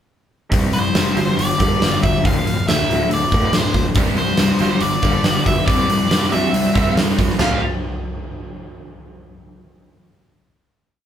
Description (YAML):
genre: quiet-loud alternative rock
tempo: 139 BPM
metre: 4/4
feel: straight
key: D minor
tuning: A4 = 440 Hz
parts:
  - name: electric guitar through a small old amp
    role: arpeggios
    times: 0.5-7.6 s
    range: D2 to F4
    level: -25 LUFS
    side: right 1 dB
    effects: tremolo
  - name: thick fuzz guitar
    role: riff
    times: 0.5-7.6 s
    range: D2 to F4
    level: -23 LUFS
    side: left 6 dB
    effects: distortion
  - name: fuzz picked electric bass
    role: bass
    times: 0.5-7.6 s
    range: D1 to C2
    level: -26 LUFS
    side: equal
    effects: overdrive
  - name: huge arena drum kit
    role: drums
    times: 0.5-7.5 s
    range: hi-hat, kick drum, snare drum, splash cymbal, toms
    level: -19 LUFS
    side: right 1 dB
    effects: none
  - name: nasal lead guitar with a parked wah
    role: melody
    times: 0.7-7.6 s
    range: C5 to F5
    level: -22 LUFS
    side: equal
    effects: overdrive
  - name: scooped high-gain guitar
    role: riff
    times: 4.0-7.6 s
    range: D2 to F4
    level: -25 LUFS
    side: right 4 dB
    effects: distortion
room: moderate large studio reverb, RT60 1.3 s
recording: band playing live in one room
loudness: -15 LUFS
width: side -9 dB against mid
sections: 0.5-7.4 pre-chorus; 7.4-9.1 final chord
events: none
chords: 0.5 C5; 1.2 G5; 2.2 Dm; 4.0 C5; 4.6 G5; 5.7 C; 7.4 Dm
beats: | 0.51 0.94 1.38 1.81 | 2.24 2.67 3.10 3.53 | 3.96 4.39 4.82 5.25 | 5.68 6.11 6.54 6.97 | 7.40